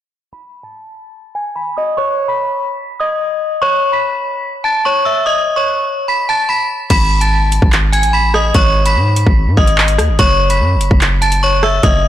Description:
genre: hip hop, drill.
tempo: 146 BPM.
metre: 4/4.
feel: half-time.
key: G# phrygian.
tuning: A4 = 438 Hz.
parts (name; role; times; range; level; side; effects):
metallic FM bell; melody; 0.3-12.1 s; C#5 to B6; -14 LUFS; equal; chorus, low-pass filter.
hard-hitting 808-style bass; bass; 6.9-12.1 s; F#1 to G#2; -14 LUFS; equal; none.
drill drum kit; drums; 6.9-11.9 s; crash cymbal, handclaps, hi-hat, kick drum, rim click; -14 LUFS; equal; none.
room: light reverb.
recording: blown-out, overdriven recording, overdrive.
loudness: -11 LUFS.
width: side -12 dB against mid.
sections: 0.3-6.9 A section; 6.9-12.1 B section.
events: filter sweep on synth bell 0.3-6.9.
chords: 0.3 G#m (rootless); 3.6 C#7(no3); 6.9 G#m; 10.2 F#5.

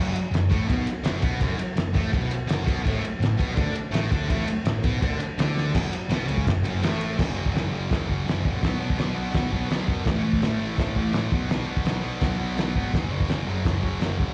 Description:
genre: garage rock duo or trio.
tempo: 167 BPM.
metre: 4/4.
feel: straight.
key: F# minor.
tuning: A4 = 440 Hz.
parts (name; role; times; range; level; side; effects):
thick fuzz guitar; riff; 0.0-14.3 s; F#2 to D4; -30 LUFS; equal; distortion, slapback echo.
fuzz picked electric bass; bass; 0.0-14.3 s; F#1 to F#2; -32 LUFS; equal; overdrive.
cloth-damped thuddy drum kit; drums; 0.2-14.3 s; crash cymbal, kick drum, ride cymbal, snare drum; -28 LUFS; equal; vintage 12-bit sampler grit.
room: small room ambience.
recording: live gig heard through the venue's PA, club reverb.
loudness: -25 LUFS.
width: mono.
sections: 0.0-5.7 A section; 5.7-7.2 B section; 7.2-14.3 C section.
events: drum fill 5.6.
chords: 0.0 F#m; 2.9 Asus24; 5.7 F#m; 7.2 F#5; 8.6 B5; 10.1 A5; 11.3 B5; 12.9 F#5.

